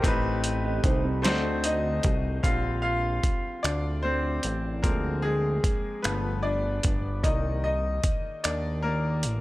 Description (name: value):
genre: slow six-eight R&B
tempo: 50 BPM (dotted quarters)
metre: 6/8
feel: straight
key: unclear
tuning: A4 = 439 Hz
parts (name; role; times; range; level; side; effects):
- bright grand piano; accompaniment; 0.0-9.4 s; D3 to F5; -28 LUFS; left 2 dB; none
- fat analog bass; bass; 0.0-9.4 s; G1 to Eb2; -29 LUFS; equal; none
- dusty soul sampler-style drum kit; drums; 0.0-9.4 s; finger snaps, hi-hat, kick drum, snare drum; -26 LUFS; equal; overdrive
- mellow electric guitar; second line; 0.6-1.4 s; C4 to Eb5; -34 LUFS; right 4 dB; tape echo
room: digital ambience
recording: dry, gritty hardware recording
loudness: -24 LUFS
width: side -18 dB against mid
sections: 0.0-2.4 A section; 2.4-9.4 B section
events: grand piano solo 2.4-9.4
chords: 0.0 Am7b5; 1.2 D7b9; 2.4 Bb6; 4.8 Dm7b5; 6.0 G7; 7.2 Cm9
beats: | 0.04 1.24 | 2.44 3.64 | 4.84 6.04 | 7.24 8.44